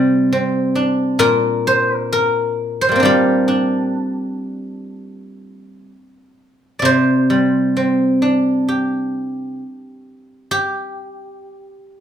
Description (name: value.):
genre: chinese traditional, Chinese solo plucked strings.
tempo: 59-69 BPM.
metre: 4/4.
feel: rubato.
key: G yu mode.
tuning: A4 = 441 Hz.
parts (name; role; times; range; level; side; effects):
guzheng; solo; 0.0-12.0 s; Bb2 to D5; -15 LUFS; equal; none.
room: light reverb.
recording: band playing live in one room.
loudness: -15 LUFS.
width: side -9 dB against mid.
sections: 0.0-6.9 A section; 6.9-12.0 B section.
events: none.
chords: none.